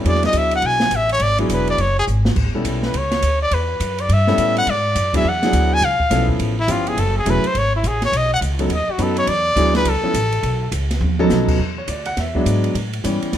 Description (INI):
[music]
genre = jazz, small-group swing and bop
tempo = 208 BPM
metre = 4/4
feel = swing 62% on 8ths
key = E mixolydian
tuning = A4 = 439 Hz
[part]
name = clear concert grand piano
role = accompaniment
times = 0.0-13.4 s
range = E3 to F#5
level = -21 LUFS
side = equal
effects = none
[part]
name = upright bass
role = bass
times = 0.0-13.4 s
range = E1 to A2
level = -21 LUFS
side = equal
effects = none
[part]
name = open jazz drum kit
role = drums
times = 0.0-13.4 s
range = crash cymbal, hi-hat, kick drum, ride cymbal, snare drum, toms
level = -25 LUFS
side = right 2 dB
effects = none
[part]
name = clear trumpet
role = melody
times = 0.1-10.7 s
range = E4 to G#5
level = -19 LUFS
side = left 1 dB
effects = plate reverb
[sound]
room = light reverb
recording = none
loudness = -16 LUFS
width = side -10 dB against mid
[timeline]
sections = 0.0-11.6 A section; 11.6-13.4 A section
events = trumpet solo 0.0-11.6; drum fill 2.1, 11.0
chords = 0.1 E7; 2.4 A7; 4.7 E7; 5.8 C#7alt; 7.0 F#m7; 8.1 B; 9.3 E7; 9.9 C#7alt; 10.4 B7; 11.6 E7; 12.8 A7